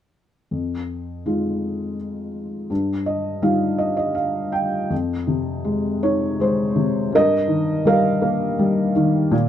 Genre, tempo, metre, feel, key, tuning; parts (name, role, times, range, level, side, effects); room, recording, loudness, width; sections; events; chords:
classical, lyrical solo piano; 82 BPM; 3/4; rubato; F minor; A4 = 439 Hz
felt-muted upright piano; solo; 0.5-9.5 s; F2 to G5; -19 LUFS; equal
moderate studio reverb, RT60 0.7 s; dark, warm production; -19 LUFS; side -10 dB against mid
0.5-4.9 A section; 4.9-9.5 B section
felt piano fill 2.7-4.9
0.5 Fm7; 2.7 Ebadd9/G; 4.9 Fm7; 7.1 Ebadd9/G